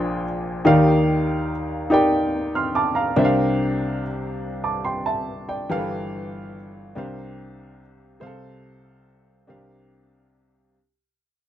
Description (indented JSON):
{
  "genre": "gospel",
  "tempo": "48 BPM (dotted quarters)",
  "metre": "6/8",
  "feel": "straight",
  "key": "unclear",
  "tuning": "A4 = 441 Hz",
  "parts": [
    { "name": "dark upright piano", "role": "solo", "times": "0.0-10.8 s", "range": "G1 to F6", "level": "-20 LUFS", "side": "equal", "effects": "none" }
  ],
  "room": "light reverb",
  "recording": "dry, close 1970s-style studio recording",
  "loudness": "-19 LUFS",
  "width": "side -11 dB against mid",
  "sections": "0.0-10.7 A section",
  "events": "fade-out 0.0-10.7",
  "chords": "0.0 Bb13; 0.7 Ebmaj9; 3.2 C9sus4; 5.7 G13; 7.0 C9sus4; 8.2 F/C; 9.5 C9sus4"
}